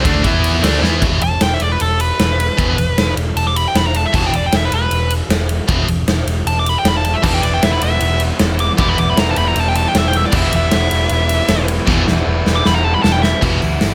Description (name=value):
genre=hard rock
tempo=155 BPM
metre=4/4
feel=straight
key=E minor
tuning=A4 = 440 Hz
part: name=biting overdriven guitar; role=riff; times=0.0-1.0, 7.2-13.9 s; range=D3 to E4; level=-23 LUFS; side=equal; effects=none
part: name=overdriven semi-hollow guitar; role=riff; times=0.0-13.6 s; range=E2 to E4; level=-25 LUFS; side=equal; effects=none
part: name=scooped high-gain guitar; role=riff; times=0.0-13.6 s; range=E2 to E4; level=-23 LUFS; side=equal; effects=distortion
part: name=picked electric bass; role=bass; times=0.0-13.9 s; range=E1 to E2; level=-21 LUFS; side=equal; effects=none
part: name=huge arena drum kit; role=drums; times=0.0-13.9 s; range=crash cymbal, hi-hat, kick drum, ride cymbal, snare drum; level=-20 LUFS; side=equal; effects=none
part: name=nasal lead guitar with a parked wah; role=melody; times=1.2-13.4 s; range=A4 to D6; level=-21 LUFS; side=equal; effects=overdrive
room=moderate studio reverb, RT60 0.6 s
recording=none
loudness=-15 LUFS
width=mono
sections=0.0-1.0 A section; 1.0-13.4 B section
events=drum fill 0.8, 11.9-13.4; lead electric guitar solo 1.0-13.4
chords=0.3 E5; 0.6 Asus24/D; 1.0 Em